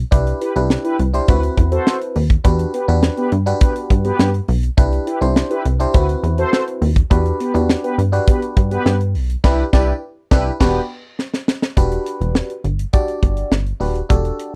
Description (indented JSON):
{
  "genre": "early-eighties boogie funk",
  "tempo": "103 BPM",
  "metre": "4/4",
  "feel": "straight",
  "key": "E minor",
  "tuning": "A4 = 440 Hz",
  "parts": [
    { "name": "plucky analog bass", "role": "bass", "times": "0.0-14.3 s", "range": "D#1 to G2", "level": "-20 LUFS", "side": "equal", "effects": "none" },
    { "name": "FM electric piano", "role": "accompaniment", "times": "0.1-14.6 s", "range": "C4 to D5", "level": "-24 LUFS", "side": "equal", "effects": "chorus, phaser" },
    { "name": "tight funk drum kit", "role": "drums", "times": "0.1-14.5 s", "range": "crash cymbal, hi-hat, kick drum, snare drum", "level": "-17 LUFS", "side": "equal", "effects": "none" },
    { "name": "mellow synth brass", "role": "second line", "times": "0.4-10.8 s", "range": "B3 to C5", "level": "-24 LUFS", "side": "equal", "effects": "chorus" }
  ],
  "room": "little or no reverb",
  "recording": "dry, close 1970s-style studio recording",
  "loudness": "-17 LUFS",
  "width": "mono",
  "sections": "0.0-11.8 A section; 11.8-14.6 B section",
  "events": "band accent 9.4-11.8; drum fill 11.2-11.8",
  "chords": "0.1 Cmaj9; 1.3 D13; 2.5 Em9; 4.8 Cmaj9; 5.9 D13; 7.1 Em9; 9.4 Cmaj9; 10.6 Em9"
}